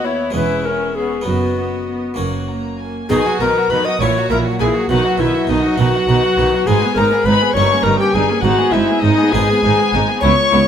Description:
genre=classical, baroque-style concerto movement with solo episodes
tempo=67 BPM (dotted quarters)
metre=6/8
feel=straight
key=B major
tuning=A4 = 440 Hz
part: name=mellow hollow tenor recorder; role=melody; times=0.0-10.7 s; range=D#4 to D#5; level=-18 LUFS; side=left 2 dB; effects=none
part: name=warm chamber violin section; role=melody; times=0.0-10.7 s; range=D#5 to D#6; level=-21 LUFS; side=left 5 dB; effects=none
part: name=warm chamber violin section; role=second line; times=0.0-10.6 s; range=B3 to G#4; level=-23 LUFS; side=left 2 dB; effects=none
part: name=harpsichord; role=accompaniment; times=0.0-10.7 s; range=C#2 to G#4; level=-23 LUFS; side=right 1 dB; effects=none
part: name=warm chamber viola section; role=accompaniment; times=0.0-10.6 s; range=D#3 to C#4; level=-25 LUFS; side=right 2 dB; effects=none
part: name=rich chamber cello section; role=bass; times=0.0-10.6 s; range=C#2 to B2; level=-22 LUFS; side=right 4 dB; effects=none
part: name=warm chamber double bass section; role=bass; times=0.0-10.6 s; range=E1 to D#2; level=-22 LUFS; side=right 4 dB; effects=none
room=moderate concert hall reverb, RT60 1.7 s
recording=close, detailed microphones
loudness=-13 LUFS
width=side -8 dB against mid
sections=0.0-3.1 A section; 3.1-10.7 B section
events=none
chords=0.4 C#m7/E; 1.3 B/F#; 2.2 F#; 3.1 B; 4.0 F#7/A#; 4.9 B; 6.7 G#m; 7.6 D#7/G; 8.4 G#m

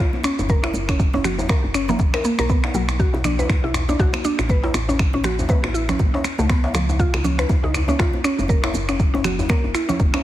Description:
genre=afro house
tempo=120 BPM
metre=4/4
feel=swing 58% on 16ths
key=unclear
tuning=A4 = 440 Hz
part: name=mallet-like synth pluck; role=arpeggios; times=0.0-10.2 s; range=E#3 to B4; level=-23 LUFS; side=equal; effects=chorus, sidechain pumping, tape echo
part: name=woody FM bass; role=bass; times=0.0-10.1 s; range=F#1 to C#2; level=-24 LUFS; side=equal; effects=sidechain pumping
part: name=electronic shaker and finger snaps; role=drums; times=0.0-10.2 s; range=none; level=-27 LUFS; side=equal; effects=studio ambience
part: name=congas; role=percussion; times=0.1-10.1 s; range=none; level=-30 LUFS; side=right 2 dB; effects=none
part: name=djembe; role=percussion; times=0.1-10.2 s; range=none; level=-30 LUFS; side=left 2 dB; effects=none
part: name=electronic kick drum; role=drums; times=0.5-10.1 s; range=none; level=-19 LUFS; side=equal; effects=studio ambience
room=light reverb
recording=heavily compressed radio sound, multiband compression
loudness=-17 LUFS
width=side -14 dB against mid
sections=0.0-10.2 A section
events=none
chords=0.5 F#; 2.5 Bm; 4.5 A; 6.5 C#7; 8.5 F#5

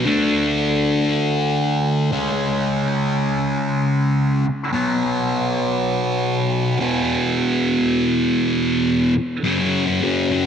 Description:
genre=rock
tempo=free time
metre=none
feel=none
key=unclear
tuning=A4 = 440 Hz
part: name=thick fuzz guitar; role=solo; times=0.0-10.5 s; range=E2 to D4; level=-17 LUFS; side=equal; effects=distortion, phaser, analog delay
room=light reverb, digital ambience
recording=echo-heavy mix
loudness=-17 LUFS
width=side -8 dB against mid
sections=0.0-9.4 A section; 9.4-10.5 B section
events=none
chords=0.0 D5; 2.1 C#5; 4.7 B5; 6.8 E5; 9.4 F#5

